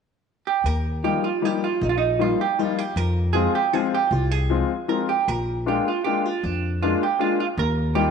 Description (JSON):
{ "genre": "musette waltz", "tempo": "156 BPM", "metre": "3/4", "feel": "rubato", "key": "Eb major", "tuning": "A4 = 442 Hz", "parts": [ { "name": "vintage hollow-body jazz guitar", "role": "melody", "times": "0.5-8.1 s", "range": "D4 to Bb4", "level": "-24 LUFS", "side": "right 9 dB", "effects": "none" }, { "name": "upright bass", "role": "bass", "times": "0.6-8.1 s", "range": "Bb1 to F2", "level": "-23 LUFS", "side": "left 1 dB", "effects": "tube saturation" }, { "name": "bright upright piano", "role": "accompaniment", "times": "1.0-8.1 s", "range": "F3 to F4", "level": "-24 LUFS", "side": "left 10 dB", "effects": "none" } ], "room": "moderate echo chamber reverb, RT60 1.8 s, small room ambience", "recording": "1960s-style stereo with parts hard left and right", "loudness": "-20 LUFS", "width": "side -6 dB against mid", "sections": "0.6-8.1 A section", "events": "none", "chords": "0.0 N.C.; 0.6 Ebadd9; 3.0 Fm; 5.3 Bb7; 7.6 Ebadd9" }